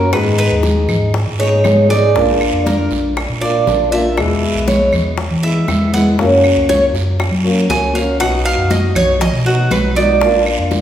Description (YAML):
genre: latin, Cuban son and guajira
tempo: 119 BPM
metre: 4/4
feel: straight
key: unclear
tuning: A4 = 440 Hz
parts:
  - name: fingerpicked old ladder-braced acoustic guitar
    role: accompaniment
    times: 0.0-10.8 s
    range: B2 to Ab4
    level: -17 LUFS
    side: left 2 dB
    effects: none
  - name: Cuban tres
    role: arpeggios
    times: 0.0-10.4 s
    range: F#4 to Ab5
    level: -17 LUFS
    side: right 3 dB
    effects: none
  - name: pure sine sub bass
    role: bass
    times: 0.0-10.8 s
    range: Bb1 to Gb3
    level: -18 LUFS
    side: equal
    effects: none
  - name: bongos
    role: percussion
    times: 0.1-10.8 s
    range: none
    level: -26 LUFS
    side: left 4 dB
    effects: none
  - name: claves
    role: percussion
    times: 0.1-10.7 s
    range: none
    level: -28 LUFS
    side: right 2 dB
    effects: none
  - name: congas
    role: percussion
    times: 0.1-10.8 s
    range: none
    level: -20 LUFS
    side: equal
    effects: none
  - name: guiro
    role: percussion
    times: 0.1-10.8 s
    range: none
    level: -28 LUFS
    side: right 4 dB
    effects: none
room: wet recital hall reverb, RT60 1.3 s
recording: recorded in a church or concert hall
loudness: -12 LUFS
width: side -10 dB against mid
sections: 0.0-10.8 A section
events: Cuban tres solo 0.0-10.8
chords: 0.1 Abm; 2.2 Bb; 4.2 E; 6.2 Gb; 8.2 B; 10.2 Bb